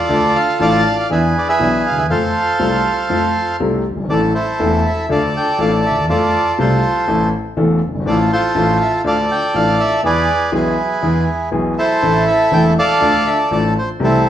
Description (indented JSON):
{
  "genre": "tango",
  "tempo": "121 BPM",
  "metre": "4/4",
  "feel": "rubato",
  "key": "unclear",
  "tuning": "A4 = 439 Hz",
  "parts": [
    { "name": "bandoneon", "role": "melody", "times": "0.0-14.3 s", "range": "C4 to A5", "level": "-16 LUFS", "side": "right 1 dB", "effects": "none" },
    { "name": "warm concert grand piano", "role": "accompaniment", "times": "0.1-14.2 s", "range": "E1 to A4", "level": "-17 LUFS", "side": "left 1 dB", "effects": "none" }
  ],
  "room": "wet large studio reverb, RT60 1.1 s",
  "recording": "band playing live in one room",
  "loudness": "-13 LUFS",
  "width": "side -10 dB against mid",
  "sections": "0.0-14.3 A section",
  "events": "none",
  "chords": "0.1 Dm; 1.1 E7; 2.1 F; 4.1 Am; 5.1 Dm; 6.1 F; 7.1 Am; 8.1 F/A; 9.0 Dm; 10.0 E; 12.0 Am; 13.0 Dm"
}